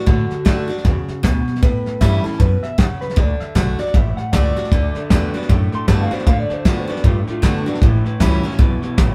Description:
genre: rockabilly.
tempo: 155 BPM.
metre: 4/4.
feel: swing 60% on 8ths.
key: D major.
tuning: A4 = 440 Hz.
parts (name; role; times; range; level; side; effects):
electric guitar through a small old amp; melody; 0.0-7.8 s; D4 to C6; -28 LUFS; equal; none.
picked steel-string acoustic guitar; accompaniment; 0.0-9.1 s; A2 to F#4; -25 LUFS; equal; none.
upright bass; bass; 0.1-9.1 s; A1 to A2; -22 LUFS; equal; none.
soft brush drum kit; drums; 0.1-9.1 s; hi-hat, kick drum, snare drum; -20 LUFS; equal; none.
electric guitar through a small old amp; riff; 4.7-9.1 s; A2 to B3; -30 LUFS; equal; none.
room: light reverb.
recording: band playing live in one room.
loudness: -17 LUFS.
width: mono.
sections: 0.0-9.1 A section.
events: clean electric guitar solo 0.0-9.1.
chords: 0.0 D; 1.6 A7; 3.2 D; 7.8 A7.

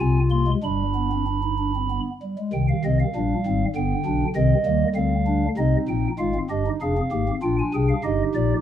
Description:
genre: classical, baroque-style 4-part fugue for pipe organ.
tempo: 97 BPM.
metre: 3/4.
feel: straight.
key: C minor.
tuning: A4 = 440 Hz.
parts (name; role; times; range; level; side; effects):
pipe organ, stopped flute; solo; 0.0-8.6 s; F1 to C6; -20 LUFS; equal; none.
room: moderate stone room reverb, RT60 1.1 s.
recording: close, detailed microphones.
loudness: -20 LUFS.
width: side -10 dB against mid.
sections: 0.0-2.5 A section; 2.5-6.2 B section; 6.2-8.6 A section.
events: none.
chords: 0.0 Dm7b5 (rootless); 0.6 G; 2.5 Cm; 3.8 G; 4.4 Cm; 6.2 Fm; 7.4 Bb; 8.0 Eb/G.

